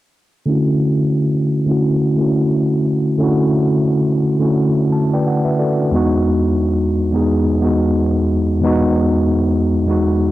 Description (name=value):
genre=hip hop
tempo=88 BPM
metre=4/4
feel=swing 57% on 16ths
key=D major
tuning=A4 = 439 Hz
part: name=mellow tine electric piano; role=accompaniment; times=0.5-10.3 s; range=E2 to A5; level=-14 LUFS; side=equal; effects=medium stereo tremolo, cassette tape, low-pass filter
room=moderate small room ambience, RT60 0.5 s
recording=dry, gritty hardware recording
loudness=-14 LUFS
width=side -16 dB against mid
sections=0.5-10.3 A section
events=filter sweep on tine electric piano 0.5-10.3; tine electric piano fill 4.5-5.9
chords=0.5 Dmaj9; 5.9 Emaj9